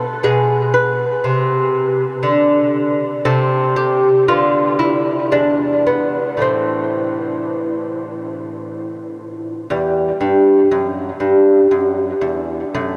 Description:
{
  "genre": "classical, baroque-style dance for lute",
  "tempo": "54-61 BPM",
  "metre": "3/4",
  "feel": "rubato",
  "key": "A minor, E minor from 9.7 s",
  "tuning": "A4 = 440 Hz",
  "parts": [
    { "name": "lute", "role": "solo", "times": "0.0-13.0 s", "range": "E2 to B4", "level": "-17 LUFS", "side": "equal", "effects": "analog delay" }
  ],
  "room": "wet huge ambient reverb, RT60 8.5 s",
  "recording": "dreamy mix soaked in reverb",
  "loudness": "-16 LUFS",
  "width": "mono",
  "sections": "0.0-9.7 A section; 9.7-13.0 A section",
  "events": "none",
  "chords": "0.2 Bm6; 3.2 Am/C; 4.3 Bdim/D; 5.3 E7; 6.4 Am; 9.7 Em"
}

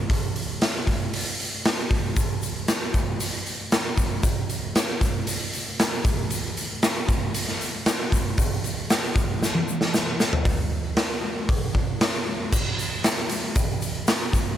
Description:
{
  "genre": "rock",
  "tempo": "116 BPM",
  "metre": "4/4",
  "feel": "straight",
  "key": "none",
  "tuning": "none",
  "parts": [
    { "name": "raw garage drum kit", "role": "drums", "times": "0.1-14.5 s", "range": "crash cymbal, hi-hat, kick drum, snare drum, toms", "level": "-22 LUFS", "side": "equal", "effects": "none" },
    { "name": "egg shaker", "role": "percussion", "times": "2.2-14.5 s", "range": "none", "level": "-35 LUFS", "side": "left 6 dB", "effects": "none" }
  ],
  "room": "little or no reverb",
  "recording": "none",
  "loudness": "-22 LUFS",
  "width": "side -10 dB against mid",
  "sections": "0.0-10.5 A section; 10.5-12.5 B section; 12.5-14.6 C section",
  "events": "drum fill 9.4-10.5",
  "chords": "none"
}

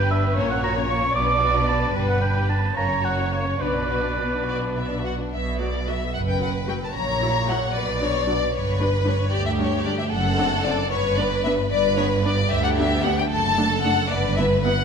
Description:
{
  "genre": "quick classical-period movement for symphony orchestra",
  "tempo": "75 BPM (dotted quarters)",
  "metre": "6/8",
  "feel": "rubato",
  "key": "B minor",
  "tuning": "A4 = 440 Hz",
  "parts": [
    { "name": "rich chamber violin section", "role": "melody", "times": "0.0-14.8 s", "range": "B4 to A#5", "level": "-26 LUFS", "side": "left 5 dB", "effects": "none" },
    { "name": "clear oboe", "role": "second line", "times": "0.0-5.0 s", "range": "B4 to D6", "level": "-25 LUFS", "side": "right 2 dB", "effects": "none" },
    { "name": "rich chamber violin section", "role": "second line", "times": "0.0-14.8 s", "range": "G3 to D5", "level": "-27 LUFS", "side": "left 2 dB", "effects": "none" },
    { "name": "warm studio viola section", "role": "accompaniment", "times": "0.0-14.7 s", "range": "F#3 to D5", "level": "-29 LUFS", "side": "right 1 dB", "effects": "none" },
    { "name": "rich chamber double bass section", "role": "bass", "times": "0.0-14.8 s", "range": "F#1 to D2", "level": "-26 LUFS", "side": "right 2 dB", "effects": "none" },
    { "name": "warm chamber cello section", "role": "bass", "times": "0.0-14.8 s", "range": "D2 to B2", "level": "-27 LUFS", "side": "right 2 dB", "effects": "none" }
  ],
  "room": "wet scoring stage reverb, RT60 1.6 s",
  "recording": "minimal, uncompressed stereo recording",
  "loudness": "-20 LUFS",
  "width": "side -6 dB against mid",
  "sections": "0.0-5.3 A section; 5.3-14.8 B section",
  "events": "none",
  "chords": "0.4 F#/A#; 1.2 Bm; 2.0 G; 2.8 F#; 3.6 Bm; 5.3 B5; 6.9 F#7/A#; 7.7 Bm; 8.5 G; 10.1 D7/F#; 10.9 G; 13.3 D/F#; 14.1 Em/G"
}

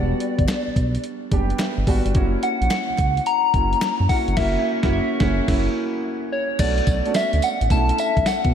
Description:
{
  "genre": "R&B, new jack swing",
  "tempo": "108 BPM",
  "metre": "4/4",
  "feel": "swing 67% on 16ths",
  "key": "B minor",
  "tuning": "A4 = 440 Hz",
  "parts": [
    { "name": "soft struck synth lead", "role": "melody", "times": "0.0-8.5 s", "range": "C#5 to A#5", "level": "-23 LUFS", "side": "left 2 dB", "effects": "chorus, phaser, ping-pong delay" },
    { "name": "warm grand piano", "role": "accompaniment", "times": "0.0-8.5 s", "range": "G3 to G5", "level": "-25 LUFS", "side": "right 2 dB", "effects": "wide subtle chorus" },
    { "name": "smooth synth bass", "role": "bass", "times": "0.0-8.5 s", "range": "E1 to B2", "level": "-22 LUFS", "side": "equal", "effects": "none" },
    { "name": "clean 12-bit digital drum machine", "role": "drums", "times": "0.2-8.5 s", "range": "crash cymbal, hi-hat, kick drum, snare drum, tambourine", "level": "-24 LUFS", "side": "equal", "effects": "none" },
    { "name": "group handclap", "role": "percussion", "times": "0.5-4.0 s", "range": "none", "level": "-41 LUFS", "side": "left 6 dB", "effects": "none" }
  ],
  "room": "moderate lush hall reverb, RT60 2.1 s",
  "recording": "dreamy mix soaked in reverb",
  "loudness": "-18 LUFS",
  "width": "side -8 dB against mid",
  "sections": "0.0-6.6 A section; 6.6-8.5 B section",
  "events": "grand piano fill 1.3-2.1; band accent 4.4-6.6; break 5.5-6.6",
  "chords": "0.0 Em9; 2.1 F#7; 6.6 Bm7"
}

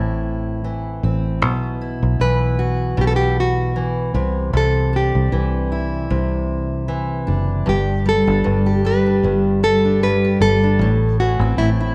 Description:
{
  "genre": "pop",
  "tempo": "77 BPM",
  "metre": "4/4",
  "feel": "swing 55% on 16ths",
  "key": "G major",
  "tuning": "A4 = 438 Hz",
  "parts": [
    { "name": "nylon-string guitar", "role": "melody", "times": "0.0-11.7 s", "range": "E4 to B4", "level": "-23 LUFS", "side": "equal", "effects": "none" },
    { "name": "fingerpicked steel-string acoustic guitar", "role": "accompaniment", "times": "0.0-11.9 s", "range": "G2 to G4", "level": "-22 LUFS", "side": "equal", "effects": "none" },
    { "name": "fingered electric bass", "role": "bass", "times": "0.0-11.9 s", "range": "F#1 to C2", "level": "-23 LUFS", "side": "equal", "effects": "none" }
  ],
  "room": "moderate echo chamber reverb, RT60 1.6 s, studio ambience",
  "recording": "none",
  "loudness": "-18 LUFS",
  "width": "mono",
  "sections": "0.0-7.7 A section; 7.7-11.9 B section",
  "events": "none",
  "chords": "0.0 Am; 1.4 Esus2/B; 4.2 Cadd9; 7.7 G; 10.8 Am"
}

